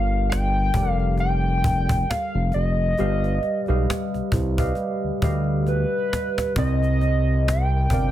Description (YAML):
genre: R&B, neo-soul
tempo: 67 BPM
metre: 4/4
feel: swing 55% on 16ths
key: unclear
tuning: A4 = 440 Hz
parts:
  - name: hollow square lead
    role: melody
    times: 0.0-8.1 s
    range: B4 to G5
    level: -26 LUFS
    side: left 1 dB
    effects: chorus, slapback echo
  - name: tine electric piano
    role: accompaniment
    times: 0.0-8.1 s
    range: C3 to G5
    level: -26 LUFS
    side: right 2 dB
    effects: wide subtle chorus
  - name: smooth synth bass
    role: bass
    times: 0.0-8.1 s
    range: F1 to D2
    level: -22 LUFS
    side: equal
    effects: none
  - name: cajon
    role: drums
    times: 0.3-8.1 s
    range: none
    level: -26 LUFS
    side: equal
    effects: none
room: light reverb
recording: dense, heavily limited modern master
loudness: -20 LUFS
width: side -12 dB against mid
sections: 0.0-8.1 A section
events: drum fill 5.7-6.6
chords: 0.0 Gm7; 3.0 G7b13; 6.6 Cm7